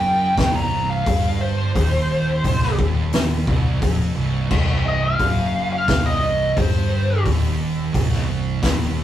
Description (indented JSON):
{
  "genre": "stoner and doom metal",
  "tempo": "87 BPM",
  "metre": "4/4",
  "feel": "straight",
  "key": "C minor",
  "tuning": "A4 = 440 Hz",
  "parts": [
    { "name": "fuzz lead guitar", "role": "melody", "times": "0.0-7.2 s", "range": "C5 to Bb5", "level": "-22 LUFS", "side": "left 1 dB", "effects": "wah, distortion" },
    { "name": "thick fuzz guitar", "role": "riff", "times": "0.0-9.0 s", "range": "C2 to G2", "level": "-29 LUFS", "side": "left 3 dB", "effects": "distortion" },
    { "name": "thick fuzz guitar", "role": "riff", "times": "0.0-9.0 s", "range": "C2 to G2", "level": "-24 LUFS", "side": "right 4 dB", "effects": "distortion" },
    { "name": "overdriven fingered electric bass", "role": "bass", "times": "0.0-9.0 s", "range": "C1 to G1", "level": "-28 LUFS", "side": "equal", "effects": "none" },
    { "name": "oversized low-tuned drum kit", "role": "drums", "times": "0.4-8.8 s", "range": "crash cymbal, hi-hat, kick drum, snare drum", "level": "-21 LUFS", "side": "left 1 dB", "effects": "none" }
  ],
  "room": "moderate studio reverb, RT60 0.6 s",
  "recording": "rough rehearsal-room recording",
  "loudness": "-17 LUFS",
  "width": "side -11 dB against mid",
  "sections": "0.0-9.0 A section",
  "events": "lead electric guitar solo 0.0-9.0",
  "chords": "0.0 Cm",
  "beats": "0.38 1.06 | 1.75 2.44 3.13 3.82 | 4.51 5.20 5.88 6.57 | 7.26 7.95 8.63"
}